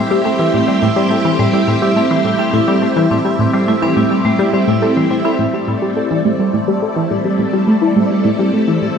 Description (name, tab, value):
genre	ambient, sequencer-driven space music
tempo	105 BPM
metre	4/4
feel	straight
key	A minor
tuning	A4 = 440 Hz
part	phased string machine	sustained chords	0.0-9.0 s	G3 to A4	-18 LUFS	equal	ensemble chorus, phaser
part	vibraphone with medium hard mallets	arpeggios	0.0-5.3 s	G3 to E4	-18 LUFS	right 1 dB	auto-pan, ping-pong delay
part	tight sequenced synth	riff	0.0-8.9 s	A2 to E4	-15 LUFS	left 1 dB	chorus, phaser, ping-pong delay
part	pulsing gated texture	texture	0.0-9.0 s	D5 to E5	-23 LUFS	right 2 dB	chorus, built-in reverb
room	wet echo chamber reverb, RT60 2.2 s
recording	echo-heavy mix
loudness	-12 LUFS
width	side -7 dB against mid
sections	0.0-5.4 A section; 5.4-9.0 A section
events	none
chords	0.0 Am7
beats	0.25 | 0.82 1.40 1.97 2.54 | 3.11 3.68 4.25 4.82 | 5.39 5.97 6.54 7.11 | 7.68 8.25 8.82